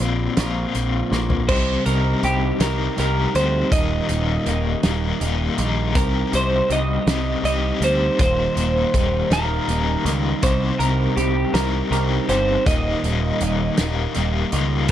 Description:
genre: indie rock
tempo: 54 BPM (dotted quarters)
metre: 6/8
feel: straight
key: Eb major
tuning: A4 = 440 Hz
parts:
  - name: twelve-string electric guitar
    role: melody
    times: 0.0-13.7 s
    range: G4 to Eb5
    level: -24 LUFS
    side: right 1 dB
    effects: analog delay
  - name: crunchy overdriven guitar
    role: riff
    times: 0.0-14.9 s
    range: Eb2 to G4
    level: -24 LUFS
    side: left 7 dB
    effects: tremolo
  - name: twelve-string electric guitar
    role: riff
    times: 0.0-14.9 s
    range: Eb2 to G4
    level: -27 LUFS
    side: right 8 dB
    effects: lush chorus
  - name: growling picked electric bass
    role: bass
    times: 0.0-14.9 s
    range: Eb1 to D2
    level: -23 LUFS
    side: equal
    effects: overdrive
  - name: loose indie drum kit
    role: drums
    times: 0.4-14.9 s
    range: crash cymbal, hi-hat, kick drum, snare drum, toms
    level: -23 LUFS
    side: equal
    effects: none
room: light reverb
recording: dark, warm production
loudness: -18 LUFS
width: side -11 dB against mid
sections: 0.0-1.5 A section; 1.5-14.9 B section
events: drum fill 1.1-1.5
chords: 0.0 Bbsus2; 1.5 Cm; 3.7 Eb; 6.0 Cm; 8.2 Eb; 10.4 Cm; 12.7 Eb

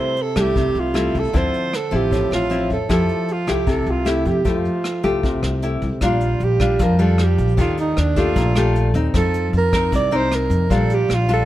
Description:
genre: bossa nova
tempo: 154 BPM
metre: 4/4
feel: straight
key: F major, Bb major from 6.0 s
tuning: A4 = 441 Hz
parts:
  - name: mellow alto saxophone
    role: melody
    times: 0.0-11.4 s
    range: D4 to D5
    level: -22 LUFS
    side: right 4 dB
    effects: none
  - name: nylon-string guitar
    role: accompaniment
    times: 0.0-11.4 s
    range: A2 to Bb4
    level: -21 LUFS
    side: left 2 dB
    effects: none
  - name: vintage brush drum kit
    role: drums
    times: 0.2-11.4 s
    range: hi-hat, kick drum, rim click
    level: -25 LUFS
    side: equal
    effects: none
  - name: upright bass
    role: bass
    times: 0.4-11.4 s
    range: A1 to F2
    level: -21 LUFS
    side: equal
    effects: none
room: light reverb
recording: none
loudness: -16 LUFS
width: side -14 dB against mid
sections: 0.0-6.0 A section; 6.0-11.4 B section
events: none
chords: 0.0 Fmaj9/C; 1.3 Dm9; 2.9 Fmaj9; 6.0 Bb6; 7.6 Ebmaj9#11; 9.1 F7sus4; 10.7 Bb6

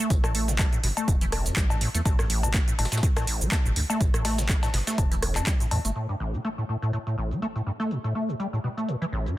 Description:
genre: acid house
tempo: 123 BPM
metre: 4/4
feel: swing 55% on 16ths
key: unclear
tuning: A4 = 444 Hz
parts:
  - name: acid bass, square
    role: riff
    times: 0.0-9.4 s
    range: A1 to A3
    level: -28 LUFS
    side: equal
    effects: overdrive, lush chorus, sidechain pumping, digital delay
  - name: punchy analog drum machine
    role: drums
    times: 0.0-9.4 s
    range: cowbell, handclaps, hi-hat, rim click, shaker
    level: -30 LUFS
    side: left 1 dB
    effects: low-pass filter on hats, low-pass filter on perc, low-pass filter on snare
  - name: round analog bass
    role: bass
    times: 0.1-5.9 s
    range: E1 to E2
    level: -28 LUFS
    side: equal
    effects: sidechain pumping
  - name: breakbeat sampler-style drum kit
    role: drums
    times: 0.1-6.0 s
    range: hi-hat, snare drum, tambourine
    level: -39 LUFS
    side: left 1 dB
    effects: high-pass filter on perc, high-pass filter on snare, high-pass filter on hats
  - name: electronic kick drum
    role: drums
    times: 0.1-5.6 s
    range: none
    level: -24 LUFS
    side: equal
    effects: none
room: digital ambience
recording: dense, heavily limited modern master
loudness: -23 LUFS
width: side -15 dB against mid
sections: 0.0-6.0 A section; 6.0-9.4 B section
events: none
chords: 0.0 A5

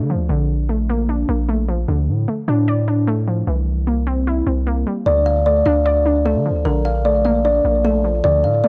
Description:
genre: hip hop, trap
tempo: 151 BPM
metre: 4/4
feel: half-time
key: unclear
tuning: A4 = 439 Hz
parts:
  - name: warbly dusty pluck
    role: accompaniment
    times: 0.0-8.7 s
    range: D3 to D5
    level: -23 LUFS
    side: equal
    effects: chorus, low-pass filter
  - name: long sustained 808-style bass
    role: bass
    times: 0.0-8.6 s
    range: Bb1 to D3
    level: -22 LUFS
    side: equal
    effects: none
  - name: kalimba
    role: melody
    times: 5.1-8.7 s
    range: A4 to F5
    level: -19 LUFS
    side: equal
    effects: low-pass filter, tape echo
room: studio reverb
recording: dry, gritty hardware recording, transformer saturation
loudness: -18 LUFS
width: mono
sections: 0.0-8.7 A section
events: break 0.0-5.1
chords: 0.3 Bbmaj7; 1.9 Dm; 3.5 C7; 5.1 Dm; 6.7 Bbmaj7

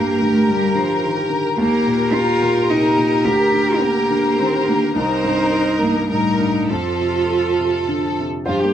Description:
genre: neoclassical piano and strings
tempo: 106 BPM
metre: 3/4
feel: rubato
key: G minor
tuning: A4 = 442 Hz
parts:
  - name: clear symphonic violin section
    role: melody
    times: 0.0-8.7 s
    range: F4 to Bb4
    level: -22 LUFS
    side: left 2 dB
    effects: none
  - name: clear cello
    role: second line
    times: 0.0-8.7 s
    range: F3 to G4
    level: -21 LUFS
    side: right 2 dB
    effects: none
  - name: clear grand piano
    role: accompaniment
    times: 0.0-8.7 s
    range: C2 to C5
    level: -22 LUFS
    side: left 1 dB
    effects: none
  - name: warm viola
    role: accompaniment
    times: 0.0-8.7 s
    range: Eb4 to G4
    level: -21 LUFS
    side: right 1 dB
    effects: none
room: wet booth ambience, RT60 0.3 s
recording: heard from further back in the room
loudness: -15 LUFS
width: side -10 dB against mid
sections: 0.0-8.5 A section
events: none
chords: 0.0 Gm; 1.6 Eb; 3.3 Gm/D; 5.0 Cm7; 6.7 F

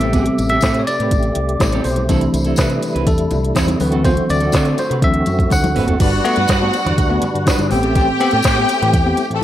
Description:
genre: disco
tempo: 123 BPM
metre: 4/4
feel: straight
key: G major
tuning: A4 = 440 Hz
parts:
  - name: barky tine electric piano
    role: accompaniment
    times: 0.0-9.4 s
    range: G2 to F#5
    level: -20 LUFS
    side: left 1 dB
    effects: fast stereo tremolo
  - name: clean electric guitar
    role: accompaniment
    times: 0.0-9.4 s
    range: C4 to D5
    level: -24 LUFS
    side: right 5 dB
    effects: none
  - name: percussive tonewheel organ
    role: sustained chords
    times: 0.0-9.4 s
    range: C3 to B4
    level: -23 LUFS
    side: equal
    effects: overdrive, chorus vibrato, slow rotary speaker
  - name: fingered electric bass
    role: bass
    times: 0.0-9.1 s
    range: F#1 to D3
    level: -20 LUFS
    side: equal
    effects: none
  - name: organic electronic drum kit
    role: drums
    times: 0.0-9.4 s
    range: crash cymbal, handclaps, hi-hat, kick drum, snare drum, toms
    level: -19 LUFS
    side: equal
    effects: gated reverb
  - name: congas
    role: percussion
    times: 0.0-9.4 s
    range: none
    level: -27 LUFS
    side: left 4 dB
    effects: none
  - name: tambourine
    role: percussion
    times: 0.1-9.3 s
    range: none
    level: -33 LUFS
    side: left 2 dB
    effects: none
  - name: rich studio string section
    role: second line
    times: 6.0-9.4 s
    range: A3 to G5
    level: -19 LUFS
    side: left 2 dB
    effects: none
room: light reverb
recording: none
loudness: -14 LUFS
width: side -12 dB against mid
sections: 0.0-6.0 A section; 6.0-9.4 B section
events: tine electric piano solo 0.0-6.0; drum fill 5.5-6.0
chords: 0.0 Am7; 2.1 C6; 3.8 D7; 6.0 Gmaj7; 7.7 Am7

